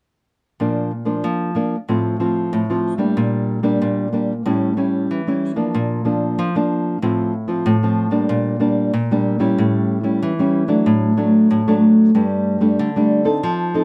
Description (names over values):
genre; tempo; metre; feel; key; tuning
samba; 94 BPM; 4/4; straight; Bb major; A4 = 440 Hz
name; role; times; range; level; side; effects
nylon-string guitar; solo; 0.6-13.8 s; G2 to A4; -18 LUFS; equal; none
room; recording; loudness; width
light reverb; close, detailed microphones; -18 LUFS; mono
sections
0.6-5.7 A section; 5.7-13.8 B section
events
none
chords
0.6 Bb; 1.9 F/A; 3.2 Gm/Bb; 4.5 A7; 5.7 Bb; 7.0 F/A; 8.3 Gm/Bb; 9.6 A7; 10.9 D/A; 12.1 Gsus2